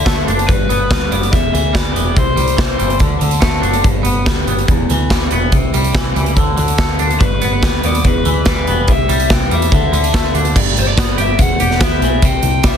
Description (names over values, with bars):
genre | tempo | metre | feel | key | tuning
indie rock | 143 BPM | 4/4 | straight | G major | A4 = 440 Hz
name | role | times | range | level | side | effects
overdriven electric guitar | melody | 0.0-3.0, 7.2-12.8 s | B4 to G5 | -20 LUFS | left 4 dB | none
twangy electric guitar | riff | 0.0-12.8 s | E2 to G4 | -19 LUFS | equal | double-tracked left and right
overdriven picked electric bass | bass | 0.0-12.8 s | E1 to E2 | -18 LUFS | equal | none
big rock drum kit | drums | 0.1-12.7 s | crash cymbal, hi-hat, kick drum, snare drum | -15 LUFS | equal | none
room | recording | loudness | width
little or no reverb | dense, heavily limited modern master | -12 LUFS | side -8 dB against mid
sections
0.0-10.6 A section; 10.6-12.8 B section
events
none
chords
0.5 G; 1.3 Em; 2.2 C; 3.0 D5; 3.8 G; 4.7 Em; 5.5 C; 6.4 D5; 7.2 G; 8.0 Em; 8.9 C; 9.7 Dsus2; 10.6 G; 11.4 Em; 12.2 C5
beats
0.05 | 0.47 0.90 1.32 1.74 | 2.16 2.58 3.00 3.42 | 3.84 4.26 4.68 5.10 | 5.52 5.94 6.36 6.78 | 7.20 7.62 8.04 8.46 | 8.88 9.30 9.72 10.14 | 10.55 10.97 11.39 11.81 | 12.23 12.64